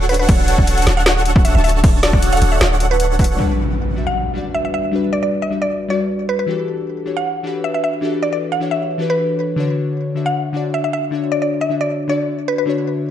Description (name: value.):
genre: future bass.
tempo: 155 BPM.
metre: 4/4.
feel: half-time.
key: D major.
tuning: A4 = 439 Hz.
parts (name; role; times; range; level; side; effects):
airy dreamy lead; arpeggios; 0.0-3.4 s; F#5 to A5; -26 LUFS; left 1 dB; chorus, sidechain pumping, digital delay.
supersaw chords; riff; 0.0-3.4 s; D4 to A5; -21 LUFS; right 1 dB; phaser, sidechain pumping, low-pass filter, digital delay.
warm 808-style bass; bass; 0.0-3.4 s; D1; -17 LUFS; equal; sidechain pumping.
mallet-like synth pluck; melody; 0.1-12.6 s; B4 to F#5; -21 LUFS; equal; chorus, sidechain pumping, digital delay.
trap drum kit; drums; 0.1-3.5 s; crash cymbal, hi-hat, snare drum; -20 LUFS; equal; low-pass filter on hats, low-pass filter on snare, low-pass filter on cymbals.
electronic kick drum; drums; 0.3-3.3 s; none; -14 LUFS; equal; overdrive.
glassy digital keys; accompaniment; 3.4-13.1 s; D3 to E5; -20 LUFS; left 2 dB; chorus, sidechain pumping, digital delay.
impact; sound effects; 3.4-4.9 s; none; -23 LUFS; equal; none.
room: light reverb.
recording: dark, warm production.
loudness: -15 LUFS.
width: side -10 dB against mid.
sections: 0.0-3.4 A section; 3.4-13.1 B section.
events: drop 0.0-3.4; impact 3.4-4.9.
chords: 0.0 Dmaj7; 3.4 Gmaj7; 6.5 Em11; 9.6 Dmaj7.